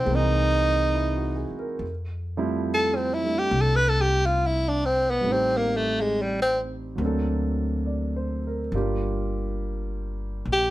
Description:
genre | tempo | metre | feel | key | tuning
jazz ballad | 70 BPM | 4/4 | swing 66% on 8ths | unclear | A4 = 437 Hz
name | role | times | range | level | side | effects
clear tenor saxophone | melody | 0.0-10.7 s | G3 to B4 | -22 LUFS | equal | none
warm concert grand piano | accompaniment | 0.0-10.7 s | E3 to D5 | -30 LUFS | right 3 dB | none
upright bass | bass | 0.0-10.7 s | G1 to F2 | -27 LUFS | left 1 dB | none
room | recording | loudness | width
light reverb | none | -22 LUFS | side -16 dB against mid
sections
0.0-10.7 A section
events
tenor saxophone solo 0.0-10.7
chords
0.1 C7alt; 1.8 Fmaj9; 5.3 Am7b5; 7.0 D7b13; 8.7 Gm7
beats
0.10 0.96 | 1.82 2.69 3.55 4.41 | 5.27 6.14 7.00 7.86 | 8.72 9.59 10.45

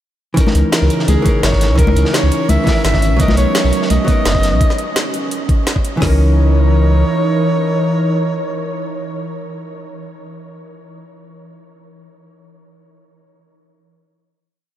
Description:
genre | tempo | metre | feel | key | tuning
liquid drum and bass | 170 BPM | 4/4 | straight | C# dorian | A4 = 442 Hz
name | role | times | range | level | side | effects
vintage hollow-body jazz guitar | accompaniment | 0.3-10.2 s | D#3 to A#4 | -20 LUFS | equal | none
airy breathy pad | sustained chords | 0.4-9.6 s | C#3 to A#4 | -22 LUFS | equal | chorus, sidechain pumping
crunchy breakbeat drum kit | drums | 0.4-4.5 s | hi-hat, snare drum | -26 LUFS | equal | high-pass filter on hats, high-pass filter on snare, high-pass filter on room
garage drum kit | drums | 0.4-6.1 s | hi-hat, kick drum, snare drum | -16 LUFS | equal | overdrive
garage drum kit | drums | 0.4-5.9 s | hi-hat, rim click, snare drum | -23 LUFS | equal | overdrive
sub bass with octave | bass | 0.5-7.0 s | F#1 to C#2 | -14 LUFS | equal | none
congas | percussion | 0.5-4.0 s | none | -24 LUFS | left 3 dB | none
clear alto saxophone | melody | 0.7-9.6 s | G#4 to E5 | -22 LUFS | equal | tape echo
room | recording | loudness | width
moderate huge ambient reverb, RT60 8.6 s | dreamy mix soaked in reverb | -12 LUFS | side -12 dB against mid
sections
0.4-6.0 drop; 6.0-8.8 final chord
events
drop 0.4-6.0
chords
0.4 C#m69; 3.2 Bmaj7; 6.0 C#m69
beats
| 0.37 0.73 1.08 1.43 | 1.78 2.14 2.49 2.84 | 3.20 3.55 3.90 4.26 | 4.61 4.96 5.32 5.67 | 6.02 6.37 6.73 7.08 | 7.43 7.79 8.14 8.49

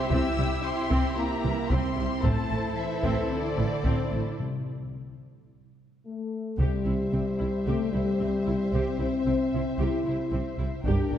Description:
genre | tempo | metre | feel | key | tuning
cinematic, epic orchestral film score | 112 BPM | 4/4 | straight | C mixolydian | A4 = 442 Hz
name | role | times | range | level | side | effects
dark symphonic violin section | melody | 0.0-11.2 s | D5 to E6 | -37 LUFS | left 2 dB | none
warm symphonic violin section | second line | 0.0-11.2 s | G4 to E5 | -36 LUFS | left 3 dB | none
warm symphonic viola section | accompaniment | 0.0-11.2 s | E3 to G4 | -34 LUFS | equal | none
warm trombone section | sustained chords | 0.0-4.4 s | D3 to E4 | -33 LUFS | right 4 dB | none
dark French horn section | sustained chords | 0.1-11.2 s | G3 to E4 | -29 LUFS | left 3 dB | none
dark chamber double bass section | bass | 0.1-11.2 s | G1 to C2 | -32 LUFS | right 2 dB | none
warm studio cello section | bass | 0.1-11.2 s | G2 to C3 | -33 LUFS | right 2 dB | none
taiko ensemble | drums | 0.1-7.6, 10.9-11.2 s | none | -31 LUFS | equal | none
timpani | percussion | 4.4-5.2 s | C3 | -36 LUFS | left 2 dB | none
room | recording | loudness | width
wet concert hall reverb, RT60 2.2 s | dark, warm production | -25 LUFS | side -10 dB against mid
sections
0.0-6.6 A section; 6.6-11.2 B section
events
break 4.4-6.6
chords
0.0 C; 2.2 Am; 4.4 N.C.; 6.6 C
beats
| 0.10 0.64 1.17 1.70 | 2.23 2.76 3.30 3.84 | 4.39 4.94 5.49 6.04 | 6.59 7.13 7.66 8.20 | 8.73 9.27 9.80 10.33 | 10.86

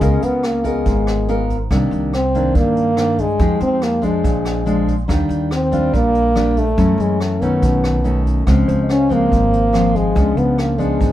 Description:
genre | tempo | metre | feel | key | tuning
bossa nova | 142 BPM | 4/4 | straight | unclear | A4 = 440 Hz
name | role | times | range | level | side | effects
mellow French horn | melody | 0.0-11.1 s | Ab3 to Db4 | -18 LUFS | equal | none
nylon-string guitar | accompaniment | 0.0-11.1 s | Gb2 to Bb4 | -19 LUFS | left 1 dB | none
upright bass | bass | 0.0-11.1 s | Ab1 to G2 | -20 LUFS | equal | none
vintage brush drum kit | drums | 0.0-11.1 s | hi-hat, kick drum, rim click | -23 LUFS | right 1 dB | none
barky tine electric piano | accompaniment | 8.7-11.1 s | C5 to F5 | -27 LUFS | right 3 dB | none
room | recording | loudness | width
moderate studio reverb, RT60 0.5 s | band playing live in one room | -14 LUFS | side -13 dB against mid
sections
0.0-11.1 A section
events
none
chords
0.0 Db6; 1.7 Cm9; 3.4 Fm9; 4.2 Bb7; 5.1 Ebmaj9; 6.8 Gbm7; 7.6 B9; 8.5 Dbmaj7; 10.2 Db7b9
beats
| 0.01 0.43 0.86 1.28 | 1.70 2.12 2.55 2.97 | 3.39 3.81 4.24 4.66 | 5.08 5.51 5.93 6.35 | 6.77 7.20 7.62 8.04 | 8.47 8.89 9.31 9.73 | 10.16 10.58 11.00

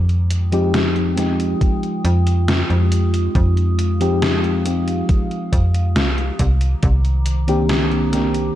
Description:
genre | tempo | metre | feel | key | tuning
vaporwave | 69 BPM | 4/4 | straight | unclear | A4 = 441 Hz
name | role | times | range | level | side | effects
warbly tape-like pad | sustained chords | 0.0-8.6 s | Eb3 to Eb6 | -27 LUFS | equal | chorus, built-in reverb
slap-like FM bass | bass | 0.0-8.5 s | C2 to F2 | -18 LUFS | equal | none
gated 80s digital drum machine | drums | 0.1-8.5 s | hi-hat, snare drum | -23 LUFS | equal | gated reverb, gated reverb snare, overdrive
mellow FM electric piano | accompaniment | 0.5-8.6 s | Eb3 to G4 | -21 LUFS | left 1 dB | analog chorus, tape echo
electronic kick drum | drums | 1.6-7.0 s | none | -18 LUFS | equal | overdrive
room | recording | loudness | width
little or no reverb | cassette tape | -15 LUFS | side -12 dB against mid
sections
0.0-8.6 A section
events
none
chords
0.0 Fm9; 6.4 Cm9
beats
0.74 1.61 2.48 | 3.35 4.22 5.09 5.96 | 6.83 7.70

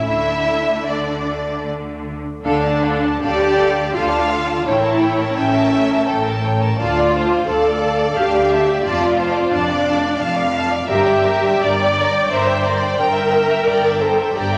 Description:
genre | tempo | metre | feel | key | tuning
classical, slow romantic movement for string orchestra | 73-90 BPM | 3/4 | rubato | D minor | A4 = 440 Hz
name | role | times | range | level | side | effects
rich studio violin section | melody | 0.0-14.6 s | A4 to G5 | -24 LUFS | equal | none
rich studio violin section | second line | 0.0-14.6 s | D4 to Bb5 | -24 LUFS | equal | none
rich studio viola section | accompaniment | 0.0-14.6 s | A3 to D5 | -21 LUFS | equal | none
clear studio cello section | bass | 0.0-14.6 s | D2 to D3 | -29 LUFS | equal | none
rich studio double bass section | bass | 0.0-14.6 s | F1 to D2 | -29 LUFS | equal | none
room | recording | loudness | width
wet scoring stage reverb, RT60 1.9 s | tube saturation | -17 LUFS | mono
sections
0.0-2.4 A section; 2.4-14.6 B section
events
none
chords
0.1 D5; 2.4 Dm; 4.7 A7b9; 6.8 Dm; 8.8 Dm/F; 10.9 Gm; 13.0 Edim/G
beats
| 0.08 0.88 1.67 | 2.44 3.22 3.94 | 4.66 5.37 6.07 | 6.78 7.47 8.16 | 8.84 9.52 10.20 | 10.88 11.62 12.31 | 12.98 13.66 14.34

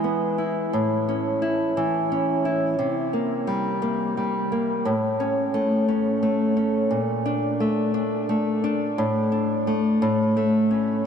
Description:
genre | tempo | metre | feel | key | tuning
pop | 58 BPM (dotted quarters) | 6/8 | straight | unclear | A4 = 440 Hz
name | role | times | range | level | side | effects
nylon-string guitar | solo | 0.0-11.1 s | A2 to E4 | -21 LUFS | equal | tape echo
room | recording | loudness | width
wet huge ambient reverb, RT60 7.2 s | dreamy mix soaked in reverb | -21 LUFS | side -7 dB against mid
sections
0.0-2.8 A section; 2.8-11.0 B section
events
none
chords
0.0 E; 0.7 A; 2.8 C5; 4.9 A; 6.9 Bbmaj7; 9.0 D5/A; 10.0 A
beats
| 0.73 1.76 | 2.79 3.83 | 4.86 5.89 | 6.92 7.95 | 8.98 10.02 | 11.05

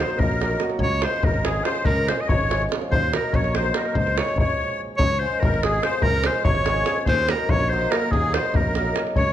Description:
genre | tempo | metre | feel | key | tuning
balkan folk, Balkan wedding band | 288 BPM (eighths) | 5/8 | straight | Db major | A4 = 440 Hz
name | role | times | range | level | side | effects
bright clarinet | melody | 0.0-9.3 s | Ab4 to Eb5 | -25 LUFS | equal | none
musette accordion | second line | 0.0-9.3 s | Ab4 to Eb5 | -28 LUFS | left 6 dB | none
cimbalom | accompaniment | 0.0-9.2 s | F3 to Bb4 | -28 LUFS | equal | none
modern bright fingered electric bass | bass | 0.0-9.3 s | Ab1 to Eb2 | -27 LUFS | right 1 dB | none
davul | percussion | 0.1-9.3 s | none | -24 LUFS | equal | none
room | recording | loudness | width
moderate recital hall reverb, RT60 1.3 s | close, detailed microphones | -19 LUFS | side -11 dB against mid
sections
0.0-5.0 A section; 5.0-9.3 A section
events
stop 4.5-5.0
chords
0.0 Ebm; 0.8 Db; 2.9 Ebm; 3.9 Db; 7.1 Ebm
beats
0.18 0.39 0.60 | 0.81 1.02 1.23 1.44 1.65 | 1.85 2.06 2.27 2.48 2.69 | 2.90 3.11 3.32 3.53 3.73 | 3.94 4.15 4.36 4.57 4.78 | 4.99 5.20 5.40 5.61 5.82 | 6.03 6.24 6.45 6.65 6.86 | 7.07 7.28 7.49 7.70 7.90 | 8.11 8.32 8.53 8.74 8.95 | 9.15

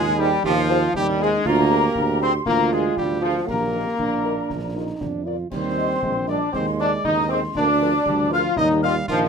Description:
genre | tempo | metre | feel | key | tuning
military-style march for wind band | 118 BPM | 2/4 | straight | Eb major | A4 = 441 Hz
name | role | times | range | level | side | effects
warm cornet | melody | 0.0-9.2 s | F4 to F5 | -30 LUFS | right 1 dB | none
mellow hollow flute section | second line | 0.0-9.1 s | F5 to F6 | -26 LUFS | equal | none
warm euphonium | second line | 0.0-9.3 s | Eb3 to G4 | -27 LUFS | right 5 dB | none
dark trombone section | sustained chords | 0.0-9.3 s | F3 to F4 | -22 LUFS | left 2 dB | none
mellow tuba | bass | 0.0-9.3 s | Bb1 to F2 | -25 LUFS | right 4 dB | none
mellow French horn section | accompaniment | 0.2-8.9 s | Eb4 to Eb5 | -27 LUFS | left 3 dB | none
concert snare drum, concert bass drum and clash cymbals | drums | 0.2-9.3 s | none | -35 LUFS | left 1 dB | none
room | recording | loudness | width
light reverb | minimal, uncompressed stereo recording | -18 LUFS | side -6 dB against mid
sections
0.0-9.3 A section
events
none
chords
0.0 Fm7/Eb; 1.5 Bb7/D; 3.5 Eb/Bb; 4.5 Bb; 5.5 Eb; 6.5 Ab/Eb; 7.6 Bb7/D; 8.6 Eb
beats
| 0.44 0.95 | 1.46 1.97 | 2.48 2.98 | 3.49 4.00 | 4.51 5.02 | 5.53 6.04 | 6.55 7.06 | 7.57 8.08 | 8.59 9.09

